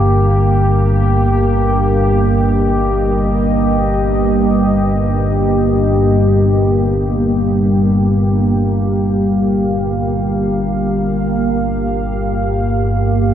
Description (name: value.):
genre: dark ambient drone.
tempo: free time.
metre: none.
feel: none.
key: unclear.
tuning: A4 = 440 Hz.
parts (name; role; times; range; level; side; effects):
deep dark ambient pad; sustained chords; 0.0-13.3 s; G2 to F5; -15 LUFS; equal; chorus, built-in reverb.
analog drone; drone; 0.0-13.3 s; G1 to G2; -16 LUFS; equal; chorus.
room: wet lush hall reverb, RT60 3.3 s.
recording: dreamy mix soaked in reverb, cassette tape.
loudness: -12 LUFS.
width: side -10 dB against mid.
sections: 0.0-13.3 A section.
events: none.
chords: 0.0 Eb/G.